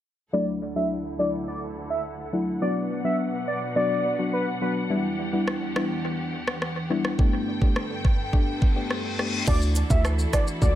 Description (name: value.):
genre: dancehall.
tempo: 105 BPM.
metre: 4/4.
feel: straight.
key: D major.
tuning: A4 = 439 Hz.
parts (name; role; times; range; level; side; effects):
warm velvety synth lead; melody; 0.3-4.7, 9.5-10.7 s; B4 to E5; -28 LUFS; right 1 dB; chorus, low-pass filter, analog delay.
soft round pluck; accompaniment; 0.3-10.8 s; F#3 to G4; -28 LUFS; left 2 dB; chorus, low-pass filter, analog delay.
rich studio string section; sustained chords; 0.3-10.8 s; D2 to G5; -33 LUFS; equal; sidechain pumping, low-pass filter.
afro-pop drum kit; drums; 5.5-10.8 s; crash cymbal, hi-hat, kick drum, rim click, shaker; -24 LUFS; equal; analog delay.
reverse cymbal; sound effects; 8.7-9.5 s; none; -33 LUFS; left 4 dB; none.
hard-hitting 808-style bass; bass; 9.5-10.8 s; C#2 to D2; -22 LUFS; right 1 dB; none.
woodblock and cabasa; percussion; 9.5-10.5 s; none; -40 LUFS; right 8 dB; analog delay.
room: light reverb.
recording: echo-heavy mix.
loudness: -23 LUFS.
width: side -12 dB against mid.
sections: 0.3-9.5 A section; 9.5-10.8 B section.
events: filter sweep 0.3-9.5; reverse cymbal 8.7-9.5.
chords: 0.3 Dadd9; 2.6 Bm; 4.9 Em7; 7.2 Gadd9; 9.5 Dadd9.